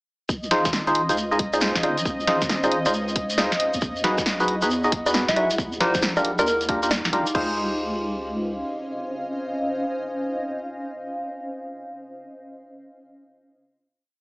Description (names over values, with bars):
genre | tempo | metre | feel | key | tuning
UK garage, two-step garage | 136 BPM | 4/4 | swing 64% on 16ths | Db major | A4 = 439 Hz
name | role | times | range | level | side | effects
warm analog pad | sustained chords | 0.3-7.4 s | Eb5 | -31 LUFS | equal | chorus, sidechain pumping
deep soft wobble bass | bass | 0.3-8.6 s | Ab1 to E2 | -31 LUFS | equal | chorus
electronic kick drum | drums | 0.3-7.5 s | none | -28 LUFS | equal | none
shekere | percussion | 0.3-7.3 s | none | -31 LUFS | equal | none
granular cloud pad | texture | 1.3-11.6 s | Db4 to D6 | -31 LUFS | equal | built-in reverb, sidechain pumping
percussive organ stab | stabs | 0.5-11.7 s | D4 to Eb5 | -24 LUFS | equal | wide subtle chorus, digital delay
punchy analog drum machine | drums | 0.5-7.5 s | bongos, crash cymbal, hi-hat, snare drum | -25 LUFS | equal | overdrive
soft struck synth lead | melody | 5.3-6.6 s | Bb4 to E5 | -24 LUFS | equal | chorus
room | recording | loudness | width
moderate digital room reverb, RT60 1.1 s | small speaker sound | -21 LUFS | side -27 dB against mid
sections
0.3-7.3 drop; 7.3-10.9 final chord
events
drop 0.3-7.3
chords
0.3 Dbmaj9; 3.6 Emaj9; 5.6 Ebmaj9; 7.3 Dbmaj9